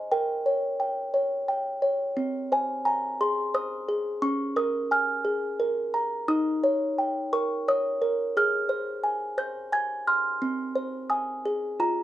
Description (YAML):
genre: classical, lullaby for music box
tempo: 87 BPM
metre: 3/4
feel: straight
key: Ab major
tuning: A4 = 440 Hz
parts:
  - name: music box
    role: solo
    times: 0.0-12.0 s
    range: C4 to Ab6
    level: -24 LUFS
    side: equal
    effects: none
room: light reverb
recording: none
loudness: -24 LUFS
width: side -13 dB against mid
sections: 0.0-12.0 A section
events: none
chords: 0.1 Gdim/Bb; 2.2 Ab/C; 4.2 Bbm7/Db; 6.3 Eb7; 8.4 Ab; 10.4 Ab/C